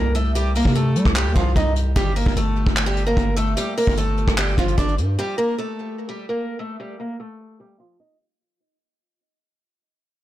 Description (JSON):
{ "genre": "hip hop, trap", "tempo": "149 BPM", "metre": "4/4", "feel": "half-time", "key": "unclear", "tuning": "A4 = 441 Hz", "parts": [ { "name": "picked acoustic archtop guitar", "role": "melody", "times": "0.0-8.2 s", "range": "F3 to Eb5", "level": "-23 LUFS", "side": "equal", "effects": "digital delay" }, { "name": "long sustained 808-style bass", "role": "bass", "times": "0.0-5.2 s", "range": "G1 to G3", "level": "-21 LUFS", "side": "equal", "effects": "none" }, { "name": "soft brush drum kit", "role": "drums", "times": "0.1-5.1 s", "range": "handclaps, hi-hat, kick drum, rim click", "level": "-22 LUFS", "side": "equal", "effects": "soft clipping on snare" } ], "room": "studio ambience", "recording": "blown-out, overdriven recording, overdrive, low-pass filter", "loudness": "-18 LUFS", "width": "side -14 dB against mid", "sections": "0.0-5.2 A section; 5.2-8.4 B section", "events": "fade-out 5.2-8.4; filter sweep 5.2-8.4", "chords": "0.0 C5; 2.0 Gm; 5.2 Fadd9 (rootless)" }